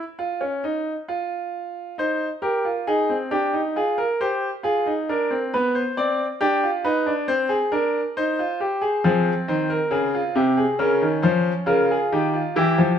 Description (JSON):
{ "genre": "classical, baroque-style 3-part fugue for grand piano", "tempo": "68 BPM", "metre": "4/4", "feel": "straight", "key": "unclear", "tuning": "A4 = 440 Hz", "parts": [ { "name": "bright baby grand piano", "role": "solo", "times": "0.0-13.0 s", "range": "C3 to D5", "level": "-20 LUFS", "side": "equal", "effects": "none" } ], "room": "wet stone room reverb, RT60 1.1 s", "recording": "heard from further back in the room", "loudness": "-20 LUFS", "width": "side -8 dB against mid", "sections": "0.0-13.0 A section", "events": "none", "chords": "0.0 N.C.; 2.0 Cm/Eb; 5.5 G/B; 7.3 Cm; 9.0 Fm; 10.8 Bbm/Db", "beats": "0.19 1.08 | 1.97 2.87 3.75 4.64 | 5.53 6.42 7.29 8.17 | 9.05 9.93 10.81 11.69 | 12.57" }